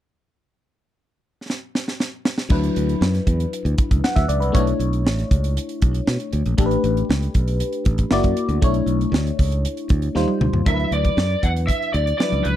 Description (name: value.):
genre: polished 1980s jazz-funk pop.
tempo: 118 BPM.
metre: 4/4.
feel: straight.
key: unclear.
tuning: A4 = 440 Hz.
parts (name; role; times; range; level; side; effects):
crisp fusion drum kit; drums; 1.5-12.6 s; crash cymbal, hi-hat, kick drum, snare drum, toms; -21 LUFS; equal; none.
FM electric piano; accompaniment; 2.5-12.6 s; E#3 to F#5; -23 LUFS; left 2 dB; wide subtle chorus.
modern bright fingered electric bass; bass; 2.5-12.5 s; F#1 to B2; -21 LUFS; equal; none.
lead guitar through a small cranked amp; melody; 10.7-12.6 s; B4 to F#5; -23 LUFS; right 1 dB; overdrive, slapback echo.
room: little or no reverb.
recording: dry, close 1970s-style studio recording.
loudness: -18 LUFS.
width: side -12 dB against mid.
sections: 0.5-2.5 A section; 2.5-10.7 B section; 10.7-12.6 C section.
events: drum fill 1.5-2.5, 10.2-10.7.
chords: 0.5 N.C.; 2.5 D69; 4.5 Bm11; 6.6 A9sus4; 8.1 F#7b13; 8.6 Bm11; 10.2 D#69; 10.7 D69.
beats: | 0.47 0.97 1.48 1.99 | 2.50 3.01 3.52 4.03 | 4.54 5.05 5.56 6.07 | 6.58 7.09 7.60 8.11 | 8.62 9.13 9.64 10.15 | 10.66 11.18 11.69 12.20.